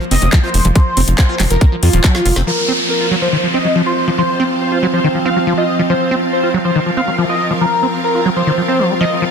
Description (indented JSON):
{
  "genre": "psychedelic trance",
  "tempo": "140 BPM",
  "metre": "4/4",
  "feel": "straight",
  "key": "unclear",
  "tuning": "A4 = 440 Hz",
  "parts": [
    { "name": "overtone-sweeping drone", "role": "sustained chords", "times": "0.0-9.3 s", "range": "F3 to C4", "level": "-20 LUFS", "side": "right 3 dB", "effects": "chorus, built-in reverb, sidechain pumping" },
    { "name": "liquid acid bass", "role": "riff", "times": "0.0-9.2 s", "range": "Eb3 to F4", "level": "-18 LUFS", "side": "equal", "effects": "chorus, auto-pan, cassette tape, sidechain pumping, dub echo" },
    { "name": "wide unison lead", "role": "melody", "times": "0.1-9.2 s", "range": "F4 to F5", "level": "-18 LUFS", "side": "left 1 dB", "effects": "phaser, sidechain pumping, dub echo" },
    { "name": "tight sequencer bass", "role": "bass", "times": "0.1-2.4 s", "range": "Eb1 to F2", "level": "-13 LUFS", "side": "equal", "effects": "none" },
    { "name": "garage drum kit", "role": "drums", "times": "0.1-2.4 s", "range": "handclaps, hi-hat, snare drum", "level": "-19 LUFS", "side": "left 1 dB", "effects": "none" },
    { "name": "electronic kick drum", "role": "drums", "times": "0.3-2.1 s", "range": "none", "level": "-11 LUFS", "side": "equal", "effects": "none" },
    { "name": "downlifter", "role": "sound effects", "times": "2.5-5.9 s", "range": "none", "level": "-21 LUFS", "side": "equal", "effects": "none" },
    { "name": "bright studio string section", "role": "texture", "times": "2.5-9.3 s", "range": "C4 to F5", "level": "-24 LUFS", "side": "left 1 dB", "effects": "sidechain pumping" }
  ],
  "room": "light reverb",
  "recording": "dense, heavily limited modern master",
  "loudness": "-12 LUFS",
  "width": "side -7 dB against mid",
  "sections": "0.0-2.5 A section; 2.5-9.3 B section",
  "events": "drop 0.0-2.5; drum fill 2.0-2.5",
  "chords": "0.0 F5"
}